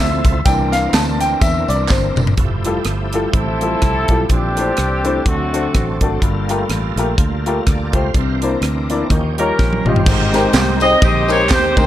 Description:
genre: uptempo gospel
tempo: 125 BPM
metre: 4/4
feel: swing 56% on 8ths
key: F major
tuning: A4 = 440 Hz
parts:
  - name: clear grand piano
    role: accompaniment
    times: 0.0-11.9 s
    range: G2 to A5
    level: -20 LUFS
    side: left 3 dB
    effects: none
  - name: bright tonewheel organ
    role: sustained chords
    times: 0.0-11.9 s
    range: E3 to F5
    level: -25 LUFS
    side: right 3 dB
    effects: slow rotary speaker, overdrive, chorus vibrato
  - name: fingered electric bass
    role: bass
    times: 0.0-11.9 s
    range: F1 to E2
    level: -20 LUFS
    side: equal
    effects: none
  - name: crisp fusion drum kit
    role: drums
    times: 0.2-11.9 s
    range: crash cymbal, hi-hat, kick drum, ride cymbal, rim click, snare drum, toms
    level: -17 LUFS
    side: equal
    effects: none
  - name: tambourine and handclaps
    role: percussion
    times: 0.2-2.3, 10.1-11.9 s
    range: none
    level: -27 LUFS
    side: right 5 dB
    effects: none
  - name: mellow horn section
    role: melody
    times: 3.3-6.2, 9.4-11.9 s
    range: A3 to Eb5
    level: -18 LUFS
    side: equal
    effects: none
room: light reverb, small room ambience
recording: none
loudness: -14 LUFS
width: side -12 dB against mid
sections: 0.0-2.4 A section; 2.4-10.1 B section; 10.1-11.9 C section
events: grand piano solo 0.0-2.4; drum fill 1.9-2.4, 9.6-10.1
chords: 0.5 C9; 2.4 Fmaj9; 4.3 Bbmaj9#11; 5.3 D7; 6.2 Gm9; 8.1 C9; 9.1 Eb9; 10.1 Abmaj9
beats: | 0.46 0.94 1.42 1.90 | 2.38 2.86 3.34 3.82 | 4.30 4.78 5.26 5.74 | 6.22 6.70 7.18 7.67 | 8.15 8.63 9.11 9.59 | 10.06 10.54 11.02 11.50

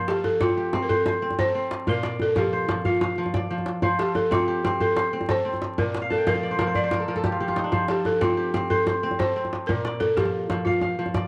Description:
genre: west african traditional, West African string and xylophone music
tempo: 123 BPM (dotted quarters)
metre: 12/8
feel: straight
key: F mixolydian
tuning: A4 = 443 Hz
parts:
  - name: kora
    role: arpeggios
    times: 0.0-11.3 s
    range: Bb2 to A5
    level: -29 LUFS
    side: equal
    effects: none
  - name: balafon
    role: melody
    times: 0.1-11.3 s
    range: F4 to D5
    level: -28 LUFS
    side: equal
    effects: slapback echo
  - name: djembe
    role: percussion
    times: 0.1-11.2 s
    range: none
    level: -30 LUFS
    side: equal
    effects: none
room: moderate spring reverb, RT60 2.6 s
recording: dark, warm production, vinyl crackle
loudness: -24 LUFS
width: mono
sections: 0.0-11.3 A section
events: kora fill 6.0-7.7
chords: 0.0 F; 1.9 Bb; 3.8 F; 5.8 Bb; 7.7 F; 9.7 Bb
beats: 0.41 0.90 1.39 | 1.88 2.36 2.85 3.34 | 3.83 4.32 4.80 5.29 | 5.78 6.27 6.76 7.25 | 7.73 8.22 8.71 9.20 | 9.68 10.17 10.66 11.15

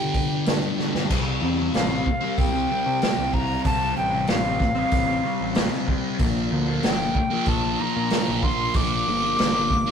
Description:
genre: psychedelic rock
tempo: 94 BPM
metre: 4/4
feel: straight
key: unclear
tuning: A4 = 439 Hz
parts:
  - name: breathy bright jazz flute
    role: melody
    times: 0.0-9.9 s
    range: F5 to D6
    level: -26 LUFS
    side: left 1 dB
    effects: none
  - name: mellow tonewheel organ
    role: sustained chords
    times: 0.0-9.9 s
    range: G3 to G5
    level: -38 LUFS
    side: right 2 dB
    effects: slow rotary speaker, overdrive
  - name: thick fuzz guitar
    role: riff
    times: 0.0-9.9 s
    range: G2 to C4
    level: -25 LUFS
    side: left 1 dB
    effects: distortion, phaser
  - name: vintage drum kit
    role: drums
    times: 0.1-9.9 s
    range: crash cymbal, hi-hat, kick drum, snare drum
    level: -25 LUFS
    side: equal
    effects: none
  - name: growling picked electric bass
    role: bass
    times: 0.9-9.9 s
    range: G1 to C3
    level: -29 LUFS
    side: equal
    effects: overdrive
room: moderate stone room reverb, RT60 1.0 s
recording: rough rehearsal-room recording, tube saturation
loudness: -20 LUFS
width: side -7 dB against mid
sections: 0.0-1.1 A section; 1.1-9.9 B section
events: drum fill 0.8-1.1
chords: 0.0 G; 1.1 Csus4; 6.2 Bb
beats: 0.46 | 1.10 1.74 2.38 3.01 | 3.65 4.29 4.93 5.56 | 6.20 6.84 7.48 8.11 | 8.75 9.39

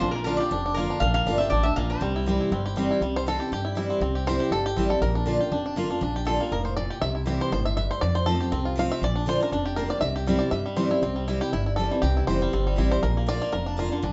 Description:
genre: bluegrass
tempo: 240 BPM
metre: 4/4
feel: swing 53% on 8ths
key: C mixolydian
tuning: A4 = 440 Hz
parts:
  - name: bluegrass banjo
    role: melody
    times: 0.0-14.1 s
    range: D3 to F5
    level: -31 LUFS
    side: equal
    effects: none
  - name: lap resonator guitar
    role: melody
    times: 0.0-2.7 s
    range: Bb4 to F5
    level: -30 LUFS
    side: equal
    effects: none
  - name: picked steel-string acoustic guitar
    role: accompaniment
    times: 0.0-14.1 s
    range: F2 to F4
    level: -29 LUFS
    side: equal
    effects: none
  - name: upright bass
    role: bass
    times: 0.0-14.1 s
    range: F1 to G2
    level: -31 LUFS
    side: equal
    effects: none
room: wet studio reverb, RT60 0.8 s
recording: band playing live in one room, nothing above 7.8 kHz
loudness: -25 LUFS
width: mono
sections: 0.0-3.0 A section; 3.0-11.0 B section; 11.0-14.1 B section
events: five-string banjo solo 3.0-14.1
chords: 0.0 Bb; 2.0 C; 5.0 Bb; 7.0 C; 8.0 F; 9.0 Bb; 10.0 C; 13.0 Bb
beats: | 0.02 0.27 0.52 0.77 | 1.02 1.27 1.52 1.77 | 2.02 2.27 2.52 2.77 | 3.02 3.27 3.52 3.77 | 4.02 4.27 4.52 4.77 | 5.02 5.27 5.52 5.77 | 6.02 6.27 6.52 6.77 | 7.02 7.27 7.52 7.77 | 8.02 8.27 8.52 8.78 | 9.03 9.28 9.53 9.78 | 10.03 10.28 10.53 10.78 | 11.03 11.28 11.53 11.78 | 12.03 12.28 12.53 12.78 | 13.03 13.28 13.53 13.78 | 14.03

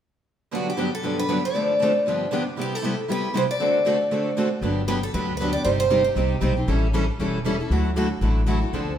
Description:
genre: acoustic string swing (jazz manouche)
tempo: 234 BPM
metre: 4/4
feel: swing 56% on 8ths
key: G major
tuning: A4 = 438 Hz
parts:
  - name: picked steel-string acoustic guitar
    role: melody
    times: 0.5-6.5 s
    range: F#4 to D5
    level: -24 LUFS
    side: equal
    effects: none
  - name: picked steel-string acoustic guitar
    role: accompaniment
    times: 0.5-8.9 s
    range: G2 to A4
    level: -26 LUFS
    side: left 2 dB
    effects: none
  - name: picked steel-string acoustic guitar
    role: accompaniment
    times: 0.5-8.9 s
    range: G2 to A4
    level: -28 LUFS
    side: right 3 dB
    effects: none
  - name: upright bass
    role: bass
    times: 4.6-9.0 s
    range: E1 to D2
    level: -24 LUFS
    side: equal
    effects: none
room: wet stone room reverb, RT60 1.3 s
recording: band playing live in one room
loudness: -20 LUFS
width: side -10 dB against mid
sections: 0.5-4.6 A section; 4.6-9.0 B section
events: none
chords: 0.5 Gmaj7; 1.5 Dm7; 2.1 G7; 2.6 Cmaj7; 3.6 D7; 4.6 Gmaj7; 5.7 Cm/G; 6.7 A7; 7.7 Dadd9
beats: | 0.52 0.77 1.03 1.29 | 1.54 1.80 2.06 2.31 | 2.57 2.83 3.08 3.34 | 3.60 3.85 4.11 4.37 | 4.63 4.88 5.14 5.40 | 5.65 5.91 6.17 6.42 | 6.68 6.94 7.19 7.45 | 7.71 7.96 8.22 8.47 | 8.73

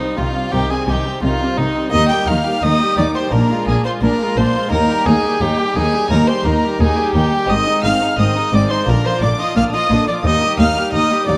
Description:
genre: classical, baroque-style concerto movement with solo episodes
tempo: 86 BPM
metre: 4/4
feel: straight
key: unclear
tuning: A4 = 440 Hz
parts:
  - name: rich chamber violin section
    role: melody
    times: 0.0-11.4 s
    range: Eb5 to G6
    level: -28 LUFS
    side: equal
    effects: none
  - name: warm violin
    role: melody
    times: 0.0-11.4 s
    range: Eb4 to G5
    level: -21 LUFS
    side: equal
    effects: none
  - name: warm chamber violin section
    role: second line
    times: 0.0-11.4 s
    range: C4 to G4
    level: -26 LUFS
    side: equal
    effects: none
  - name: dark chamber viola section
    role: accompaniment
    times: 0.0-11.4 s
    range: D3 to Bb3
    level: -26 LUFS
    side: equal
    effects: none
  - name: lute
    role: accompaniment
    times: 0.0-11.4 s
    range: Eb2 to Eb4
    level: -30 LUFS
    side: equal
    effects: none
  - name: dark chamber cello section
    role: bass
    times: 0.2-11.4 s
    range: Eb2 to Eb3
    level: -23 LUFS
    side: equal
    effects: none
  - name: rich chamber double bass section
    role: bass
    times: 0.2-11.4 s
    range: Ab1 to Eb2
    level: -24 LUFS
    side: equal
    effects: none
room: moderate scoring stage reverb, RT60 1.6 s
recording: dark, warm production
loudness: -16 LUFS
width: mono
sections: 0.0-11.4 A section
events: none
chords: 0.0 Cm; 1.9 Eb; 3.3 Bb7; 4.7 Eb; 7.5 Ab; 8.9 Bb; 10.2 Eb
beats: 0.52 1.22 | 1.92 2.62 3.32 4.02 | 4.71 5.41 6.10 6.80 | 7.49 8.18 8.87 9.56 | 10.24 10.93

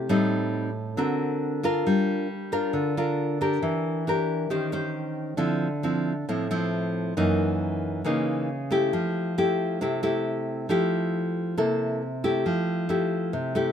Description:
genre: bossa nova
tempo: 136 BPM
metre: 4/4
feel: straight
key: F major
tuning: A4 = 438 Hz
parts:
  - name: nylon-string guitar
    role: solo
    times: 0.0-13.7 s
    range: Gb2 to C5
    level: -24 LUFS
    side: equal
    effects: none
room: light reverb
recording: none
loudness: -24 LUFS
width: side -8 dB against mid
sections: 0.0-12.5 A section; 12.5-13.7 A section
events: none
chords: 0.1 Am7b5; 1.0 D7b13; 1.9 Gm7; 3.6 Em7b5; 4.5 Eb6; 5.4 Dm9; 7.2 Gb6; 8.9 Fmaj9; 11.6 C6; 12.5 Fmaj9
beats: | 0.09 0.54 0.98 1.42 | 1.86 2.30 2.74 3.18 | 3.62 4.07 4.51 4.95 | 5.39 5.83 6.27 6.72 | 7.16 7.60 8.04 8.48 | 8.92 9.37 9.81 10.25 | 10.69 11.13 11.57 12.01 | 12.45 12.89 13.34

